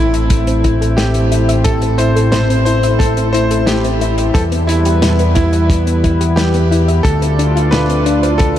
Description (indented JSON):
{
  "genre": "synthwave",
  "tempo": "89 BPM",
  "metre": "4/4",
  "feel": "straight",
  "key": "A minor",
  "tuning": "A4 = 440 Hz",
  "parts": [
    { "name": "clear electric grand piano", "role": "melody", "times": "0.0-8.6 s", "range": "E4 to C5", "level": "-19 LUFS", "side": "equal", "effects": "diffuse ambient delay" },
    { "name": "chorused pulse-width pad", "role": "sustained chords", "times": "0.0-8.6 s", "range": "G3 to D5", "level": "-18 LUFS", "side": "equal", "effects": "sidechain pumping" },
    { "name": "soft round pluck", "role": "arpeggios", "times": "0.0-8.6 s", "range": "G3 to E5", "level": "-22 LUFS", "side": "left 3 dB", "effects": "none" },
    { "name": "fat analog bass", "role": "bass", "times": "0.0-8.6 s", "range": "A1 to E2", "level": "-15 LUFS", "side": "equal", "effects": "none" },
    { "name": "warm soul drum kit", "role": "drums", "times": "0.1-8.6 s", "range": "hi-hat, snare drum, toms", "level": "-22 LUFS", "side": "left 1 dB", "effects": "none" },
    { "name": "kick drum", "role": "drums", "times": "0.3-8.5 s", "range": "none", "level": "-16 LUFS", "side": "equal", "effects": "none" }
  ],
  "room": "moderate huge ambient reverb, RT60 8.2 s",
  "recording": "dreamy mix soaked in reverb",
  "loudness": "-11 LUFS",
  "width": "side -11 dB against mid",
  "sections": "0.0-8.6 A section",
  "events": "none",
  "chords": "0.0 Am; 4.4 Em; 7.0 Dm7"
}